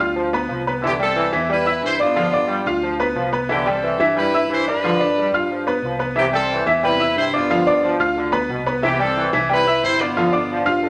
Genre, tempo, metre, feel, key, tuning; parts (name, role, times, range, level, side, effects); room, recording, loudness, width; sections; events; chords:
latin; 180 BPM; 4/4; straight; C major; A4 = 440 Hz
bright upright piano; accompaniment; 0.0-10.9 s; E3 to F6; -22 LUFS; equal
fingered electric bass; bass; 0.0-10.9 s; G1 to G2; -32 LUFS; equal
clear trombone section; second line; 0.2-10.9 s; B2 to G3; -28 LUFS; equal
brilliant horn section; melody; 0.9-10.7 s; B3 to C5; -24 LUFS; equal
wet large studio reverb, RT60 0.8 s; -19 LUFS; mono
0.0-6.2 A section; 6.2-10.9 A section
0.0 G7 (rootless); 0.8 Cmaj7; 2.2 G7; 3.5 Cmaj7; 4.8 G7; 6.2 Cmaj7; 7.5 G7; 8.8 Cmaj7; 10.2 G7